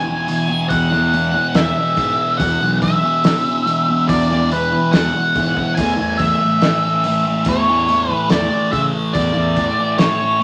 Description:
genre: psychedelic rock.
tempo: 71 BPM.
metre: 4/4.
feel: straight.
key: E mixolydian.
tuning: A4 = 440 Hz.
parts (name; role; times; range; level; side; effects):
octave-fuzz lead guitar; melody; 0.0-10.4 s; B4 to G#5; -20 LUFS; equal; distortion.
thick fuzz guitar; riff; 0.0-10.4 s; E2 to A3; -22 LUFS; equal; distortion, phaser.
cloth-damped thuddy drum kit; drums; 0.3-10.2 s; hi-hat, kick drum, snare drum; -22 LUFS; equal; none.
fuzz fingered electric bass; bass; 0.7-9.7 s; B1 to C#3; -25 LUFS; equal; overdrive.
room: moderate studio reverb, RT60 0.6 s.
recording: vinyl crackle.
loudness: -17 LUFS.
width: mono.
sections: 0.0-10.4 A section.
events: none.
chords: 0.0 E5; 5.8 A/E.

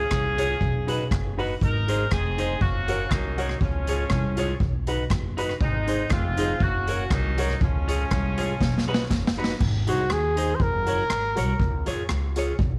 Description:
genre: ska.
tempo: 120 BPM.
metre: 4/4.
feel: swing 54% on 8ths.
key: Db major.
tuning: A4 = 440 Hz.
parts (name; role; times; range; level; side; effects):
clear horn section; melody; 0.0-9.3 s; F3 to Bb4; -31 LUFS; equal; none.
clean electric guitar; accompaniment; 0.0-12.5 s; Eb4 to Db5; -35 LUFS; equal; none.
upright bass; bass; 0.0-12.8 s; F1 to F2; -30 LUFS; equal; none.
street-band drum kit; drums; 0.1-12.7 s; crash cymbal, hi-hat, kick drum, rim click, snare drum; -29 LUFS; equal; none.
group handclap; percussion; 0.1-12.2 s; none; -44 LUFS; equal; none.
warm upright piano; stabs; 0.4-12.7 s; Eb4 to Db5; -36 LUFS; equal; none.
warm trumpet; melody; 9.9-11.9 s; Gb4 to C5; -28 LUFS; equal; none.
room: light reverb, small room ambience.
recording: none.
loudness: -25 LUFS.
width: mono.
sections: 0.0-9.6 A section; 9.6-12.8 B section.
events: drum fill 8.6-9.6; trumpet solo 9.6-12.8.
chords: 0.0 Db; 0.6 Cb; 1.6 Ab; 2.6 Gb; 3.6 Db; 4.6 Cb; 5.6 Ab; 6.6 Gb; 7.6 Db; 8.6 Cb; 9.6 Ab; 10.6 Gb; 11.6 Db.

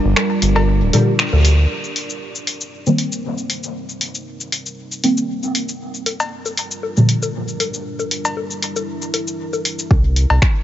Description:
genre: dub techno.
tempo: 117 BPM.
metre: 4/4.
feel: swing 54% on 16ths.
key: C minor.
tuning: A4 = 440 Hz.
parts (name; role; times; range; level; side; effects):
deep dark ambient pad; sustained chords; 0.0-10.6 s; G3 to Bb4; -26 LUFS; right 1 dB; chorus, built-in reverb, vintage 12-bit sampler grit, sidechain pumping.
round analog bass; bass; 0.0-1.7, 9.9-10.4 s; D1 to D2; -14 LUFS; equal; sidechain pumping.
wind-like tuned noise texture; texture; 0.0-1.7 s; D4 to D5; -37 LUFS; right 1 dB; built-in reverb, sidechain pumping.
deep house drum kit; drums; 0.2-10.5 s; cabasa, finger snaps, hi-hat; -21 LUFS; left 1 dB; overdrive.
bongos and cowbell; percussion; 0.2-1.4, 6.1-10.4 s; none; -24 LUFS; left 4 dB; sidechain pumping on perc, dub echo.
deep mellow chord stab; stabs; 0.9-7.1 s; Bb2 to C4; -19 LUFS; equal; chorus, phaser, sidechain pumping, dub echo.
electronic kick drum; drums; 9.9-10.5 s; none; -14 LUFS; equal; overdrive.
room: light reverb, digital ambience.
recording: nothing above 7.7 kHz.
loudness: -17 LUFS.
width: side -12 dB against mid.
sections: 0.0-1.7 A section; 1.7-9.9 B section.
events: break 0.0-1.7; band accent 1.2; filter sweep on ambient pad 1.7-9.9.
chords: 0.0 Gm7; 1.7 Cm7; 5.8 Gm7; 9.9 Cm7.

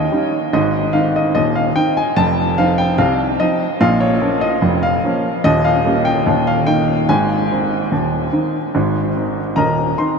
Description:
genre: ragtime piano.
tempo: 73 BPM.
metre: 2/4.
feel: straight.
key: Ab major.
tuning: A4 = 440 Hz.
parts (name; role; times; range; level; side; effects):
warm upright piano; solo; 0.0-10.2 s; Eb1 to C6; -14 LUFS; equal; none.
room: wet huge ambient reverb, RT60 8.0 s.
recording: in a vast, echoing space.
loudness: -14 LUFS.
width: side -5 dB against mid.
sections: 0.0-10.2 A section.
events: none.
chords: 0.0 Eb7; 0.5 Ab; 2.2 F5; 3.8 Bbm; 5.4 Eb7; 6.3 Eb; 7.1 Ab.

